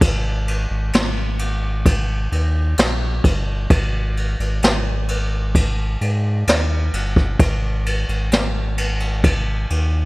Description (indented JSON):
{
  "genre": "pop ballad",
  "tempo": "65 BPM",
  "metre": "4/4",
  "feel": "straight",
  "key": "unclear",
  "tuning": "A4 = 440 Hz",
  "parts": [
    { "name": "sub bass with octave", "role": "bass", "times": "0.0-10.1 s", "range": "G1 to Ab2", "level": "-20 LUFS", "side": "equal", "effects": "none" },
    { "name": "jazz brush drum kit", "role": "drums", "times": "0.0-9.9 s", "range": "kick drum, ride cymbal, snare drum", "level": "-19 LUFS", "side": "equal", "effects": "none" }
  ],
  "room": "little or no reverb",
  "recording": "none",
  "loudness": "-17 LUFS",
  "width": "side -22 dB against mid",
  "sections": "0.0-10.1 A section",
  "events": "none",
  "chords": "none",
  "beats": "| 0.01 0.93 1.86 2.78 | 3.70 4.63 5.55 6.47 | 7.40 8.32 9.24"
}